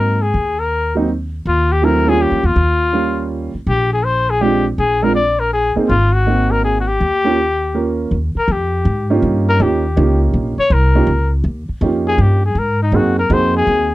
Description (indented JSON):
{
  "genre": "jazz, small-group swing and bop",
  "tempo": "162 BPM",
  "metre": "3/4",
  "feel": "swing 65% on 8ths",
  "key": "Eb mixolydian",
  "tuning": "A4 = 440 Hz",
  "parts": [
    { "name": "warm trumpet", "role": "melody", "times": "0.0-13.9 s", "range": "Eb4 to D5", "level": "-17 LUFS", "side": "left 3 dB", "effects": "none" },
    { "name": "warm baby grand piano", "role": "accompaniment", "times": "0.0-13.9 s", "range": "Gb3 to Bb4", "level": "-17 LUFS", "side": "right 3 dB", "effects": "none" },
    { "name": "upright bass", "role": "bass", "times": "0.0-13.9 s", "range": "Ab1 to Ab2", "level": "-17 LUFS", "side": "equal", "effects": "none" }
  ],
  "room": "little or no reverb",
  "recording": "dry, close 1970s-style studio recording",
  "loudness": "-13 LUFS",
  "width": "side -16 dB against mid",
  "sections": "0.0-8.1 A section; 8.1-13.9 B section",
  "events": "trumpet solo 8.1-13.9",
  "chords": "0.0 Ab9; 1.5 Eb9; 3.7 Bb9; 5.9 Ab9; 7.0 Eb9; 12.6 Ab9",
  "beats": "| 0.35 0.72 1.09 | 1.46 1.83 2.20 | 2.57 2.94 3.31 | 3.68 4.05 4.42 | 4.79 5.16 5.53 | 5.90 6.27 6.64 | 7.01 7.38 7.75 | 8.12 8.49 8.86 | 9.23 9.60 9.97 | 10.34 10.71 11.08 | 11.45 11.82 12.19 | 12.56 12.93 13.30 | 13.67"
}